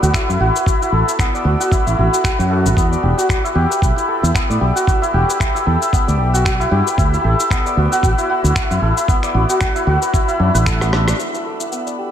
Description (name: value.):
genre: organic downtempo.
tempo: 114 BPM.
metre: 4/4.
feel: swing 56% on 16ths.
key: E minor.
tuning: A4 = 440 Hz.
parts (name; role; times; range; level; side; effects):
santur; arpeggios; 0.0-12.1 s; B3 to D5; -18 LUFS; equal; low-pass filter, digital delay, shimmer reverb.
fretless electric bass; bass; 0.0-11.1 s; E1 to A2; -16 LUFS; equal; lush chorus, sidechain pumping.
electronic shaker, finger snaps and rim click; drums; 0.0-12.0 s; none; -24 LUFS; left 2 dB; none.
electronic kick drum; drums; 0.1-10.8 s; none; -18 LUFS; equal; none.
room: light reverb.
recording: none.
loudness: -14 LUFS.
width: side -9 dB against mid.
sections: 0.0-11.2 A section.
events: drum fill 10.8-11.2; band accent 11.1.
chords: 0.0 Dadd9; 2.8 Em7; 7.0 Dadd9; 11.2 Em7.